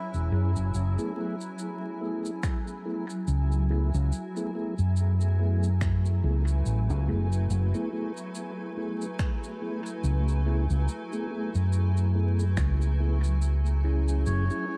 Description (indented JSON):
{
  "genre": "ambient dub",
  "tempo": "71 BPM",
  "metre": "4/4",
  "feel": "swing 57% on 16ths",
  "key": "F# minor",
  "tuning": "A4 = 440 Hz",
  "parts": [
    { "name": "melodica", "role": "melody", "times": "0.0-0.3, 14.3-14.8 s", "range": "E4 to C#5", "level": "-44 LUFS", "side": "equal", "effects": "dub echo" },
    { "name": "granular cloud pad", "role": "sustained chords", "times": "0.0-14.8 s", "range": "F#3 to G#5", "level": "-38 LUFS", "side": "equal", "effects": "built-in reverb" },
    { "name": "wind-like tuned noise texture", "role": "texture", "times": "0.0-0.8 s", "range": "C#4 to C#5", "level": "-50 LUFS", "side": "equal", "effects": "none" },
    { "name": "fingered electric bass", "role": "bass", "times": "0.1-14.5 s", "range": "E1 to F#2", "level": "-26 LUFS", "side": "equal", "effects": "none" },
    { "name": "electronic shaker and finger snaps", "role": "drums", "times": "0.1-14.7 s", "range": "none", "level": "-44 LUFS", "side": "equal", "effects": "overdrive, dub echo" },
    { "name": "mellow tonewheel organ", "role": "stabs", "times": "0.3-14.8 s", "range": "A3 to G#4", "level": "-38 LUFS", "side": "equal", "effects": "fast rotary speaker, vintage 12-bit sampler grit, dub echo" },
    { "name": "electronic kick drum", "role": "drums", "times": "2.4-12.8 s", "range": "none", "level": "-32 LUFS", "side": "equal", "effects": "overdrive" }
  ],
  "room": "little or no reverb",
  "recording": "dark, warm production, vinyl crackle",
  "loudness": "-28 LUFS",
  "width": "mono",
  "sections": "0.7-14.8 A section",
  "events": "break 0.0-0.7",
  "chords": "0.0 C#m; 0.7 F#m11; 14.3 C#m/F#",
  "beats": "| 0.74 1.59 2.44 3.28 | 4.12 4.97 5.82 6.66 | 7.51 8.35 9.20 10.04 | 10.89 11.73 12.58 13.42 | 14.27"
}